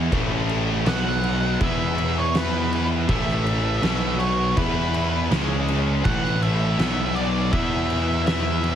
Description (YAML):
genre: quiet-loud alternative rock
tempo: 81 BPM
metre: 4/4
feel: straight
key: A major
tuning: A4 = 441 Hz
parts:
  - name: clear studio string section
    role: sustained chords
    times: 0.0-8.8 s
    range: B2 to G#5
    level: -36 LUFS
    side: equal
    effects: none
  - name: fuzz guitar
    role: riff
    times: 0.0-8.8 s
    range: A2 to E4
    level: -28 LUFS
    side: left 1 dB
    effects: distortion
  - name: high-gain distorted guitar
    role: riff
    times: 0.0-8.8 s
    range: A2 to E4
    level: -28 LUFS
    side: equal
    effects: distortion
  - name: fuzz picked electric bass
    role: bass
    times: 0.0-8.8 s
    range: A1 to E2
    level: -25 LUFS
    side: equal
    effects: overdrive
  - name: oversized low-tuned drum kit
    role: drums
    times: 0.1-8.8 s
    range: crash cymbal, kick drum, snare drum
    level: -26 LUFS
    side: equal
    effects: none
  - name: octave-fuzz lead guitar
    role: melody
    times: 0.9-8.8 s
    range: B4 to F#5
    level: -28 LUFS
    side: right 2 dB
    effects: distortion
room: light reverb, studio ambience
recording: heavily compressed radio sound, multiband compression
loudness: -20 LUFS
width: side -9 dB against mid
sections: 0.0-8.8 A section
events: none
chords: 0.1 A; 0.9 B5; 1.6 E5; 3.1 A; 3.8 B5; 4.6 E5; 5.3 C#5; 6.0 A; 6.8 B5; 7.5 E5